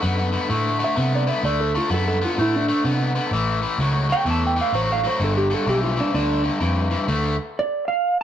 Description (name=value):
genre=electric blues shuffle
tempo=128 BPM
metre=4/4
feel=swing 63% on 8ths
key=D mixolydian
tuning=A4 = 440 Hz
part: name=overdriven electric guitar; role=riff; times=0.0-7.3 s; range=G2 to B3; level=-23 LUFS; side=left 2 dB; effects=spring reverb
part: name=vintage muted fingered electric bass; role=bass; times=0.0-7.4 s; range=G1 to C3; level=-23 LUFS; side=equal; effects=none
part: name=clean lap steel guitar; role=melody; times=0.8-8.2 s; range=D4 to A5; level=-22 LUFS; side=right 3 dB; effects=none
room=moderate studio ambience, RT60 0.5 s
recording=rough rehearsal-room recording, warm saturation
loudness=-19 LUFS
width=side -10 dB against mid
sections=0.0-8.2 A section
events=electric slide guitar solo 0.0-8.2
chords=0.0 D7; 3.3 A; 5.2 G7; 7.1 D5